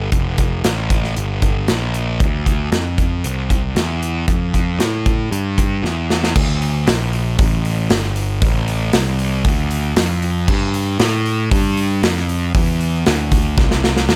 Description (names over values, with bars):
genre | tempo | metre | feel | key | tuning
blues rock power trio and southern rock | 116 BPM | 4/4 | straight | D minor | A4 = 441 Hz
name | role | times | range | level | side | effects
fuzz picked electric bass | bass | 0.0-14.2 s | F1 to A2 | -21 LUFS | equal | overdrive
big rock drum kit | drums | 0.1-14.2 s | crash cymbal, hi-hat, kick drum, snare drum | -20 LUFS | equal | none
room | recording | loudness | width
little or no reverb | none | -18 LUFS | mono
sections
0.0-6.4 A section; 6.4-14.2 B section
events
drum fill 5.8-6.4, 13.6-14.2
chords
none